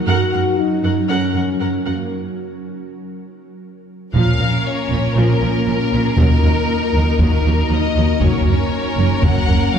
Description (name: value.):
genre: cinematic, hybrid orchestral and electronic film score.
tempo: 118 BPM.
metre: 4/4.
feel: straight.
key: Bb minor.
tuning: A4 = 441 Hz.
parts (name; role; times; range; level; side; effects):
ethereal airy pad; sustained chords; 0.0-9.8 s; Gb3 to Bb4; -23 LUFS; equal; ensemble chorus, built-in reverb.
warm symphonic viola section; accompaniment; 0.1-9.8 s; F3 to Gb5; -25 LUFS; right 1 dB; none.
dark French horn section; sustained chords; 0.1-2.1 s; Bb3 to Gb4; -21 LUFS; left 3 dB; none.
rich studio cello section; bass; 0.1-9.8 s; Eb2 to Bb2; -22 LUFS; right 3 dB; none.
warm symphonic violin section; melody; 4.1-9.8 s; Ab4 to Gb5; -23 LUFS; left 5 dB; none.
dark studio violin section; second line; 4.1-9.8 s; Db4 to Bb4; -24 LUFS; left 2 dB; none.
warm symphonic double bass section; bass; 4.1-9.8 s; Gb1 to Eb2; -19 LUFS; right 1 dB; none.
taiko ensemble; drums; 4.1-9.7 s; none; -19 LUFS; equal; none.
room: wet scoring stage reverb, RT60 1.8 s.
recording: heard from further back in the room.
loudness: -14 LUFS.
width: side -8 dB against mid.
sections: 0.0-4.1 A section; 4.1-9.8 A section.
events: break 2.1-4.1.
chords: 0.1 Gb; 2.1 N.C.; 4.1 Bbm; 6.2 Ebm; 8.2 Gb.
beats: | 0.07 0.58 1.09 1.60 | 2.11 2.62 3.12 3.63 | 4.14 4.65 5.16 5.67 | 6.17 6.68 7.19 7.70 | 8.21 8.72 9.23 9.73.